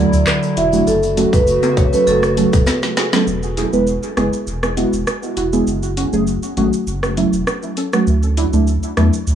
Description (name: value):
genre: dancehall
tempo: 100 BPM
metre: 4/4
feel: straight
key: F# minor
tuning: A4 = 440 Hz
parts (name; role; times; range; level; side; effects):
- marimba with medium mallets; melody; 0.0-2.5 s; A4 to E5; -18 LUFS; right 1 dB; dub echo
- deep mellow chord stab; accompaniment; 0.0-9.1 s; F#3 to B4; -18 LUFS; right 1 dB; chorus, sidechain pumping, dub echo
- hollow soft pad; sustained chords; 0.0-3.2 s; C#3 to F#4; -22 LUFS; equal; chorus, sidechain pumping
- saturated sub bass; bass; 0.0-9.3 s; E1 to E2; -20 LUFS; equal; none
- island pop drum kit; drums; 0.1-9.3 s; handclaps, hi-hat, kick drum, rim click, shaker, snare drum; -20 LUFS; equal; vintage 12-bit sampler grit
- tube shaker and timbales; percussion; 0.1-3.3 s; none; -27 LUFS; left 5 dB; dub echo
room: light reverb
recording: echo-heavy mix, small room ambience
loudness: -14 LUFS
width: side -9 dB against mid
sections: 0.0-3.3 A section; 3.3-9.3 B section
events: drum fill 2.7-3.3; break 3.3-9.3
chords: 0.0 Dadd9; 0.9 F#m; 3.3 E; 5.7 F#m; 8.1 Dadd9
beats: 0.27 | 0.87 1.47 2.07 2.67 | 3.27 3.87 4.47 5.07 | 5.67 6.27 6.87 7.47 | 8.07 8.67 9.27